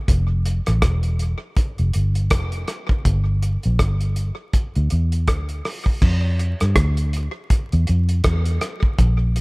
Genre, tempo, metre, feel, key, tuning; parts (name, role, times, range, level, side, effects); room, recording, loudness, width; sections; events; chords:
roots reggae; 81 BPM; 4/4; swing 57% on 16ths; A4 = 440 Hz
vintage muted fingered electric bass; bass; 0.1-9.4 s; E1 to G2; -18 LUFS; equal
cloth-damped thuddy drum kit; drums; 0.1-9.4 s; crash cymbal, hi-hat, kick drum, rim click; -21 LUFS; equal
little or no reverb; vinyl crackle; -18 LUFS; side -28 dB against mid
0.0-6.0 A section; 6.0-9.4 B section